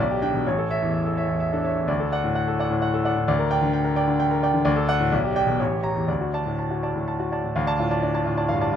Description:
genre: classical, virtuoso piano study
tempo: 128 BPM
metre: 3/4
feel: rubato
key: D major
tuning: A4 = 439 Hz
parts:
  - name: clear grand piano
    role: solo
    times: 0.0-8.8 s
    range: A1 to Bb5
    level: -21 LUFS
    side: equal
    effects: none
room: light reverb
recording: close, detailed microphones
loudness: -21 LUFS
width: side -9 dB against mid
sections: 0.0-7.6 A section; 7.6-8.8 B section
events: none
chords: 0.0 G/B; 0.5 A; 1.9 D; 3.3 Gm/D; 4.7 D; 5.1 G/B; 5.6 A7b9; 6.1 D; 7.6 Dm

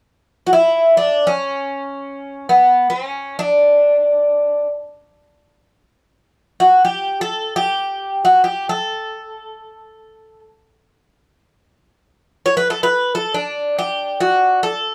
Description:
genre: greek folk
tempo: free time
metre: none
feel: none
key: D major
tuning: A4 = 440 Hz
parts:
  - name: Greek bouzouki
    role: melody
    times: 0.5-14.9 s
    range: B3 to C#5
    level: -17 LUFS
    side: equal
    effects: none
room: moderate small room reverb, RT60 0.5 s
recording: none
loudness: -17 LUFS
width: mono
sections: 0.0-14.9 A section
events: none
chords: none

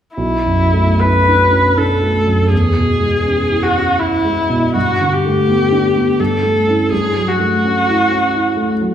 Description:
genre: classical, impressionist duo for viola and grand piano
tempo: 68-87 BPM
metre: 3/4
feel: rubato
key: B minor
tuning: A4 = 437 Hz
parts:
  - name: rich viola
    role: melody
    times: 0.2-8.7 s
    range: E4 to B4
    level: -15 LUFS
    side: left 1 dB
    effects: none
  - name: dark concert grand piano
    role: accompaniment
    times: 0.2-8.9 s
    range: B1 to E4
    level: -15 LUFS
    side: right 1 dB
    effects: none
room: wet recital hall reverb, RT60 1.5 s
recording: recorded in a church or concert hall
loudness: -12 LUFS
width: side -9 dB against mid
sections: 0.2-8.9 A section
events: none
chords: 0.2 Bm9; 2.5 E6; 4.8 Gadd9; 6.2 A7/G; 6.9 F#m7/G

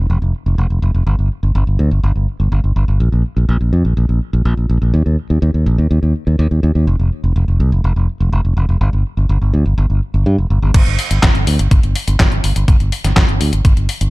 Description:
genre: italo disco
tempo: 124 BPM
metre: 4/4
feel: straight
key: G minor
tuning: A4 = 439 Hz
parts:
  - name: modern bright fingered electric bass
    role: bass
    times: 0.0-14.1 s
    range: F1 to G2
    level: -13 LUFS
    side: equal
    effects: none
  - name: detuned 8-bit digital drum machine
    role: drums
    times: 10.7-14.1 s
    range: crash cymbal, handclaps, hi-hat, snare drum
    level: -18 LUFS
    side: equal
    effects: none
  - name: electronic kick drum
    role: drums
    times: 10.7-13.7 s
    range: none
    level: -12 LUFS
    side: equal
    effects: none
room: little or no reverb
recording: dark, warm production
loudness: -12 LUFS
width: side -22 dB against mid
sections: 0.0-10.7 A section; 10.7-14.1 B section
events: none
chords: none

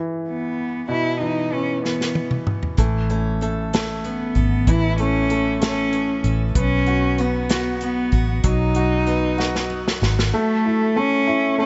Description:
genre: six-eight pop ballad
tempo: 64 BPM (dotted quarters)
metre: 6/8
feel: straight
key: unclear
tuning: A4 = 440 Hz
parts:
  - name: clear upright piano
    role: accompaniment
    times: 0.0-11.7 s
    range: B2 to F#4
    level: -28 LUFS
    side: equal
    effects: none
  - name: dark cello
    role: melody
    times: 0.3-11.7 s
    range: A3 to E4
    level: -24 LUFS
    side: equal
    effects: delay
  - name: unplugged drum kit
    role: drums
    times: 1.9-10.3 s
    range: hi-hat, kick drum, snare drum, toms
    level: -25 LUFS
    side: equal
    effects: none
  - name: picked steel-string acoustic guitar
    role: arpeggios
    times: 2.8-10.9 s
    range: E3 to A4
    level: -32 LUFS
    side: equal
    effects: delay
  - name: vintage muted fingered electric bass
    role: bass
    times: 2.8-10.3 s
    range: G#1 to B1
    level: -25 LUFS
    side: equal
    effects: none
room: studio ambience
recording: nothing above 7.8 kHz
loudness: -21 LUFS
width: mono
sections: 0.0-10.3 A section; 10.3-11.7 B section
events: drum fill 1.8-2.8, 9.4-10.3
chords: 0.0 E5; 2.8 Aadd9; 6.6 B; 10.3 A

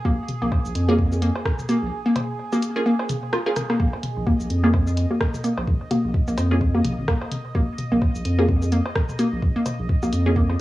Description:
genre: minimal techno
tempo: 128 BPM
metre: 4/4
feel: swing 58% on 16ths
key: Bb minor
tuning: A4 = 440 Hz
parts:
  - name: hollow square pluck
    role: riff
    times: 0.0-10.4 s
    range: Bb3 to F4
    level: -24 LUFS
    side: left 1 dB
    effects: chorus, sidechain pumping, tape echo
  - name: saturated sub bass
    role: bass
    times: 0.0-10.6 s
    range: Ab1 to F2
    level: -22 LUFS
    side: equal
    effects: sidechain pumping
  - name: electronic kick drum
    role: drums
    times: 0.0-10.5 s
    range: none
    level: -21 LUFS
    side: equal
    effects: cassette tape
  - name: electronic bongos, toms and cowbell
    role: percussion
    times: 0.0-10.6 s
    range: none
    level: -31 LUFS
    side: left 1 dB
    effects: cassette tape, analog delay
  - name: bubbling stepped-filter texture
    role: texture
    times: 0.0-10.6 s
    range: Ab4 to Eb5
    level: -36 LUFS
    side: right 4 dB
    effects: chorus, built-in reverb, sidechain pumping
  - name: techno drum kit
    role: drums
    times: 0.3-10.2 s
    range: hi-hat, rim click, shaker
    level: -30 LUFS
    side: equal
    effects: cassette tape
  - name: filtered dub chord stab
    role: stabs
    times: 0.9-10.3 s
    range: Bb3 to Ab4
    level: -26 LUFS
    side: equal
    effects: phaser, analog delay
room: light reverb, digital ambience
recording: home recording on cassette, small room ambience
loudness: -20 LUFS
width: side -16 dB against mid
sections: 0.0-10.6 A section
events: drum fill 3.4-3.8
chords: 0.0 Bb7(no3)

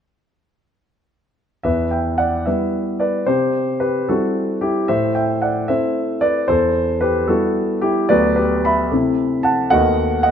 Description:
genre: classical-period piano sonatina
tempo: 75 BPM (dotted quarters)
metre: 6/8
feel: rubato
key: E minor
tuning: A4 = 440 Hz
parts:
  - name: warm concert grand piano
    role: solo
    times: 1.6-10.3 s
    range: D2 to B5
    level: -16 LUFS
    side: equal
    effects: none
room: light reverb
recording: close, detailed microphones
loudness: -16 LUFS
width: side -8 dB against mid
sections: 1.6-10.3 A section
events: none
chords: 1.6 Em; 3.3 C; 4.9 Am; 6.5 Em; 8.1 Bm/D; 8.9 Am/C; 9.7 B7/D#

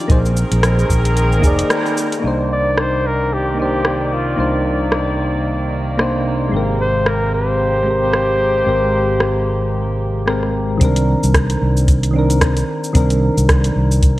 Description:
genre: sunset chillout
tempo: 112 BPM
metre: 4/4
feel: swing 57% on 16ths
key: C minor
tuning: A4 = 437 Hz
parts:
  - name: soft electric-piano-like synth keys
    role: accompaniment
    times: 0.0-14.2 s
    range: Eb3 to D5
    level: -20 LUFS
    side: equal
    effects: chorus, auto-pan, digital delay
  - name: dark chamber string section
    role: sustained chords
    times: 0.0-10.8 s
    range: C3 to D5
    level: -22 LUFS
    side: equal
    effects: low-pass filter
  - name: fretless electric bass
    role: bass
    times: 0.1-14.2 s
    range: F1 to C2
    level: -18 LUFS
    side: equal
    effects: analog chorus
  - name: deep house drum kit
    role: drums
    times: 0.1-14.1 s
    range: cabasa, hi-hat, rim click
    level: -21 LUFS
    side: equal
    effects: overdrive, studio reverb
  - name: electronic kick drum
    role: drums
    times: 0.1-1.6, 10.8-14.1 s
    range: none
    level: -15 LUFS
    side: equal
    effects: studio reverb
  - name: warm flugelhorn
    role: melody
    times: 2.5-10.2 s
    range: F4 to D5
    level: -19 LUFS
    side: equal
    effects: digital delay
room: moderate concert hall reverb, RT60 1.9 s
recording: worn, warbling old tape, cassette tape, warbly pitch drift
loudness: -14 LUFS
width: side -16 dB against mid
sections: 0.0-2.2 A section; 2.2-10.8 B section; 10.8-14.2 C section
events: break 1.7-2.2; band accent 1.7; filter sweep on string section 2.2-10.8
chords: 0.1 Bb9sus4; 2.2 Cm9; 6.5 Abmaj9; 10.8 Cm9

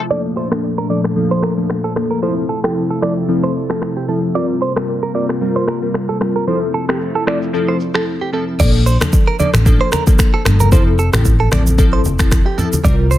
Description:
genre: afrobeats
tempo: 113 BPM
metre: 4/4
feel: swing 55% on 16ths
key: F major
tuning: A4 = 440 Hz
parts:
  - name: airy breathy pad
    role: sustained chords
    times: 0.0-8.6 s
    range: Bb2 to Bb4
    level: -22 LUFS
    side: equal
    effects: chorus
  - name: glassy digital keys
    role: accompaniment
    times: 0.1-13.1 s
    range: F3 to Bb4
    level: -19 LUFS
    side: left 2 dB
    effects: chorus
  - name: direct-recorded clean electric guitar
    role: riff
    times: 0.1-13.2 s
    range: G4 to D5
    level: -21 LUFS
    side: right 5 dB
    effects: phaser, digital delay
  - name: afro-pop drum kit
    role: drums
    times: 0.1-13.2 s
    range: crash cymbal, finger snaps, kick drum, rim click, shaker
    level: -15 LUFS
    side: equal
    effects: soft clipping on snare
  - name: hollow-body short-scale fingered electric bass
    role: bass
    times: 8.6-13.2 s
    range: F1 to C2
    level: -14 LUFS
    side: equal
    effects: none
  - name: congas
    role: percussion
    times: 8.6-13.0 s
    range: none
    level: -21 LUFS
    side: left 1 dB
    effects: none
room: little or no reverb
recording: dense, heavily limited modern master, low-pass filter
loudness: -13 LUFS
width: side -13 dB against mid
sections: 0.1-8.6 A section; 8.6-13.2 B section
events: filter sweep 0.1-8.6; break 8.1-8.6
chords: 0.1 Bbmaj7; 2.2 Fmaj7; 4.4 C7sus4; 6.5 Fmaj7; 8.6 Bbmaj7; 10.7 Fmaj7

